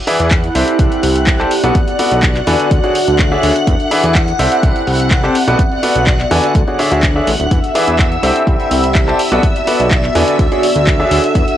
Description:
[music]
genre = piano house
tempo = 125 BPM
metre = 4/4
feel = straight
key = unclear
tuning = A4 = 440 Hz
[part]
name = string machine, violins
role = sustained chords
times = 0.0-11.6 s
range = E5 to F#6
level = -21 LUFS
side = equal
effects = ensemble chorus, vintage 12-bit sampler grit, sidechain pumping, cassette tape
[part]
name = warbly tape-like pad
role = texture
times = 0.5-11.6 s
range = B3 to B5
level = -18 LUFS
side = equal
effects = chorus, built-in reverb, sidechain pumping, cassette tape
[part]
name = bright grand piano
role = riff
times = 0.1-11.2 s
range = D3 to A5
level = -17 LUFS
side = equal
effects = sidechain pumping, cassette tape, tape echo
[part]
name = punchy analog drum machine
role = drums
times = 0.1-11.6 s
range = handclaps, hi-hat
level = -20 LUFS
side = equal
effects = none
[part]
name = fat analog bass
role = bass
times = 0.2-11.4 s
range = D1 to E2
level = -17 LUFS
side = equal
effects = sidechain pumping
[part]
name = electronic kick drum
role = drums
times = 0.3-11.5 s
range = none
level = -14 LUFS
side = equal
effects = none
[sound]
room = moderate studio reverb, RT60 0.6 s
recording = home recording on cassette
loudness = -11 LUFS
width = side -11 dB against mid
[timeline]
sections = 0.0-11.6 A section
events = none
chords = 0.0 E7; 0.6 C69; 1.5 Bm7; 2.7 Dmaj9#11; 3.7 E7; 4.4 C69; 5.4 Bm7; 6.6 Dmaj9#11; 7.5 E7; 8.2 C69; 9.2 Bm7; 10.4 Dmaj9#11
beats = 0.31 0.79 1.27 | 1.75 2.23 2.71 3.19 | 3.67 4.15 4.63 5.11 | 5.59 6.07 6.55 7.03 | 7.51 7.99 8.47 8.95 | 9.43 9.91 10.39 10.87 | 11.35

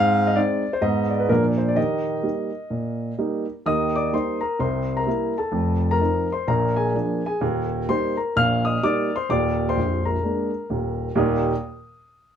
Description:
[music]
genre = jazz, stride piano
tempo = 128 BPM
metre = 4/4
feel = swing 60% on 8ths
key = Eb major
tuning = A4 = 440 Hz
[part]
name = dark baby grand piano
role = solo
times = 0.0-11.5 s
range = Bb0 to F6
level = -20 LUFS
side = equal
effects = none
[sound]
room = moderate small room ambience, RT60 0.5 s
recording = none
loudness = -20 LUFS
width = side -8 dB against mid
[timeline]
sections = 0.0-3.6 A section; 3.6-11.2 B section; 11.2-12.4 C section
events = none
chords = 0.0 Ab; 0.8 Abm; 1.3 Bb; 1.8 Eb; 4.6 C7; 5.5 F7; 6.5 Bb7; 7.4 Eb; 9.3 Bb7; 11.2 Eb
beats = 0.36 0.83 1.30 | 1.77 2.24 2.71 3.18 | 3.65 4.12 4.59 5.06 | 5.53 6.00 6.47 6.94 | 7.41 7.88 8.35 8.82 | 9.29 9.76 10.23 10.70 | 11.17

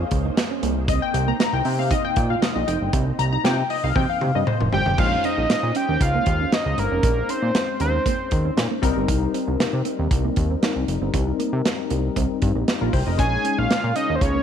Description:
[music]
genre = early-eighties boogie funk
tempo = 117 BPM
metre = 4/4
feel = straight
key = Bb dorian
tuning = A4 = 440 Hz
[part]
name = funky polysynth comp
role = accompaniment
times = 0.0-14.4 s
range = G3 to Bb5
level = -26 LUFS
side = left 9 dB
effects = chorus
[part]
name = soft string machine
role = sustained chords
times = 0.0-4.9, 13.5-14.4 s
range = C3 to Eb5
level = -32 LUFS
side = equal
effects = ensemble chorus
[part]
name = mellow electric guitar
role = riff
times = 0.0-14.4 s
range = G3 to F4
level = -30 LUFS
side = right 11 dB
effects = ensemble chorus
[part]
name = fat analog bass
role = bass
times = 0.0-14.4 s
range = F1 to C3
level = -23 LUFS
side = right 1 dB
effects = none
[part]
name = modern studio drum kit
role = drums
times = 0.1-14.3 s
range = crash cymbal, hi-hat, kick drum, snare drum, toms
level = -24 LUFS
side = right 1 dB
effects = none
[part]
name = fat analog lead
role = melody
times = 4.7-8.5, 13.2-14.4 s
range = Bb4 to Ab5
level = -24 LUFS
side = right 2 dB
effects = chorus
[sound]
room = moderate echo chamber reverb, RT60 1.4 s, small room ambience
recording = 1960s-style stereo with parts hard left and right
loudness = -19 LUFS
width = side -8 dB against mid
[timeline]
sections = 0.0-5.0 A section; 5.0-14.4 B section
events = analog polysynth solo 0.0-5.0; drum fill 4.0-5.0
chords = 0.0 Bbm11; 0.6 Cm7; 5.0 Bbm11; 8.8 Cm7; 13.2 Bbm7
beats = 0.37 | 0.88 1.39 1.91 2.42 | 2.93 3.44 3.96 4.47 | 4.98 5.50 6.01 6.52 | 7.04 7.55 8.06 8.57 | 9.09 9.60 10.11 10.62 | 11.14 11.65 12.16 12.68 | 13.19 13.70 14.21

